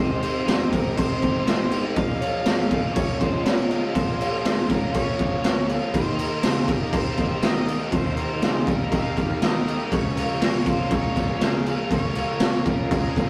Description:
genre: rock, shoegaze and dream pop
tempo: 121 BPM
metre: 4/4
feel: straight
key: unclear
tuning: A4 = 440 Hz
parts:
  - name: octave-fuzz lead guitar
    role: melody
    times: 0.0-13.3 s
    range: Ab4 to F5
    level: -36 LUFS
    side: equal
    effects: distortion
  - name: string machine, cellos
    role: sustained chords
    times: 0.0-13.3 s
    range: Bb4 to F6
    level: -37 LUFS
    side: equal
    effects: none
  - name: crunchy overdriven guitar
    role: riff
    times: 0.0-13.3 s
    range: Bb2 to Db5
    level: -34 LUFS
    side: equal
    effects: none
  - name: raw garage guitar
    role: riff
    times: 0.0-13.3 s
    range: Ab2 to F4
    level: -33 LUFS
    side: equal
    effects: overdrive
  - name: sludgy distorted guitar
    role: riff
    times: 0.0-13.3 s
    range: Ab2 to Db5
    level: -39 LUFS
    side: equal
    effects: none
  - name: fuzz picked electric bass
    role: bass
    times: 0.0-13.3 s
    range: Ab1 to Eb3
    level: -34 LUFS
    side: equal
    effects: none
  - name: raw garage drum kit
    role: drums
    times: 0.2-13.3 s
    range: crash cymbal, kick drum, snare drum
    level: -25 LUFS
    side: equal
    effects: none
room: moderate small room reverb, RT60 0.6 s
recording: rough rehearsal-room recording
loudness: -23 LUFS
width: mono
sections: 0.0-13.3 A section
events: none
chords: 0.0 Abmaj7; 2.0 Bbm7; 5.9 Eb; 9.9 Db6

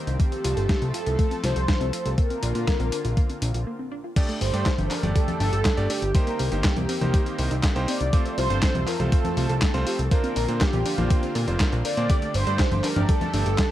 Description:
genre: italo disco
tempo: 121 BPM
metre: 4/4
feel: straight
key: Bb major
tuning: A4 = 440 Hz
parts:
  - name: lush unison pad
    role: sustained chords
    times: 0.0-13.7 s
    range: D3 to A4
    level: -33 LUFS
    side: right 1 dB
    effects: chorus
  - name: wide unison pluck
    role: arpeggios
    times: 0.0-13.6 s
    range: G3 to D5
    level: -34 LUFS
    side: left 1 dB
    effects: tape echo
  - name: fat analog bass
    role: bass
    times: 0.1-13.6 s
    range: F1 to Bb2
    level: -25 LUFS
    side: equal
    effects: none
  - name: dusty soul sampler-style drum kit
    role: drums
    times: 0.1-13.7 s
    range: congas, crash cymbal, handclaps, hi-hat, snare drum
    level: -29 LUFS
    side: left 1 dB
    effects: overdrive
  - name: mellow synth brass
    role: melody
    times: 0.2-13.7 s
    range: G4 to D5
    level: -29 LUFS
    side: equal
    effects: chorus, tape echo
  - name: electronic kick drum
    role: drums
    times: 0.2-13.7 s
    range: none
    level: -22 LUFS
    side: equal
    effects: overdrive
  - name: clear electric grand piano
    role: stabs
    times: 4.2-13.5 s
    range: A3 to D5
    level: -32 LUFS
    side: right 2 dB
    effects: none
room: light reverb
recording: dark, warm production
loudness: -21 LUFS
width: side -13 dB against mid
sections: 0.0-4.2 A section; 4.2-13.7 B section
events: break 3.7-4.2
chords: 0.2 F; 2.2 Bbadd9; 4.2 Gsus2; 6.1 Cm7; 8.1 F; 10.1 Bbadd9; 12.1 Gsus2

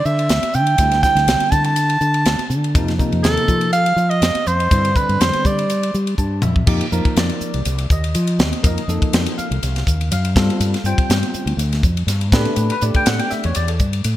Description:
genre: electric jazz fusion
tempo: 122 BPM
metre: 4/4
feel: swing 54% on 16ths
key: unclear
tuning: A4 = 441 Hz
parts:
  - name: warm soprano saxophone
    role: melody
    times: 0.0-5.9 s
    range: A4 to A5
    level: -18 LUFS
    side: right 2 dB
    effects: none
  - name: fretless electric bass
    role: bass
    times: 0.0-14.2 s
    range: C2 to G3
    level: -19 LUFS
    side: equal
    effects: lush chorus
  - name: crisp fusion drum kit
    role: drums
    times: 0.1-14.2 s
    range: crash cymbal, hi-hat, kick drum, ride cymbal, snare drum, toms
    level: -20 LUFS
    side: equal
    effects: gated reverb
  - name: barky tine electric piano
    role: accompaniment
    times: 0.8-13.8 s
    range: C3 to A5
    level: -23 LUFS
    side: left 1 dB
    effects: lush chorus
room: light reverb, small room ambience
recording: bright 1980s-style digital production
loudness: -15 LUFS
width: side -14 dB against mid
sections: 0.0-6.7 A section; 6.7-14.2 B section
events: tine electric piano fill 5.9-6.7; drum fill 6.2-6.7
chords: 0.0 D9sus4; 2.8 F7sus4; 4.7 G7sus4; 6.7 F7sus4; 10.4 G9sus4; 12.3 A9sus4

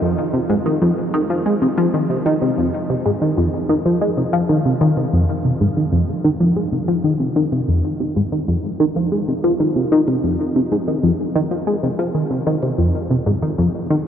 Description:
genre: ambient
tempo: 94 BPM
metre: 4/4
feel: straight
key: F minor from 5.1 s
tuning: A4 = 439 Hz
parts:
  - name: tight sequenced synth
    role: solo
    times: 0.0-14.0 s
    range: F2 to Ab3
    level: -16 LUFS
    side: equal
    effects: chorus, phaser, ping-pong delay
room: wet huge ambient reverb, RT60 7.0 s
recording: worn, warbling old tape, cassette tape, warbly pitch drift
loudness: -16 LUFS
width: side -9 dB against mid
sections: 0.0-5.1 A section; 5.1-14.1 B section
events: none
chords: none

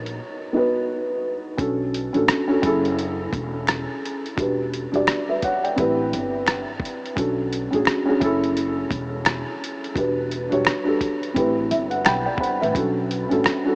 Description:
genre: lo-fi hip hop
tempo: 86 BPM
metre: 4/4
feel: swing 58% on 16ths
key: unclear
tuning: A4 = 440 Hz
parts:
  - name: felt-muted upright piano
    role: accompaniment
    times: 0.0-13.8 s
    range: B3 to B5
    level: -21 LUFS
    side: equal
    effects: cassette tape, low-pass filter
  - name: upright bass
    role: bass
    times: 0.0-13.4 s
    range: E1 to B1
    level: -30 LUFS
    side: equal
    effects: none
  - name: lo-fi sampler-style drum kit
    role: drums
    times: 0.1-13.6 s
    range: hi-hat, kick drum, rim click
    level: -25 LUFS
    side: equal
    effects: none
  - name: finger snap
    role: percussion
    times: 2.3-13.6 s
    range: none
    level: -41 LUFS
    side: left 1 dB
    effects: none
room: wet huge ambient reverb, RT60 8.0 s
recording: dreamy mix soaked in reverb, cassette tape, small speaker sound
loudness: -20 LUFS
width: side -30 dB against mid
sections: 0.0-1.6 A section; 1.6-13.8 B section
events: felt piano fill 11.4-12.8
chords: 0.0 G#m9; 1.6 Bm9; 2.6 F#m9; 4.4 Em9; 5.8 Am9; 7.2 Bm9; 8.2 F#m9; 10.0 Em9; 11.4 Am9; 12.8 Bm9

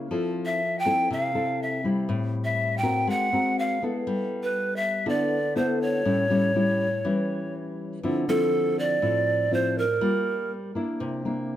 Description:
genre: bossa nova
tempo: 121 BPM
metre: 4/4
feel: straight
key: D minor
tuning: A4 = 441 Hz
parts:
  - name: nylon-string guitar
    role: accompaniment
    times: 0.0-11.6 s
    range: A2 to Bb4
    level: -26 LUFS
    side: left 2 dB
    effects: none
  - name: breathy bright large pan pipes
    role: melody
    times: 0.5-10.5 s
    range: A4 to G5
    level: -25 LUFS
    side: right 1 dB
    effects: none
room: light reverb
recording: none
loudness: -23 LUFS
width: side -12 dB against mid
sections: 0.0-8.0 A section; 8.0-11.6 B section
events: none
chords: 0.1 Fmaj7; 2.1 Am7; 3.1 G#9; 4.1 G69; 6.0 A7; 8.0 Dm9; 10.0 Gm7; 11.0 C9

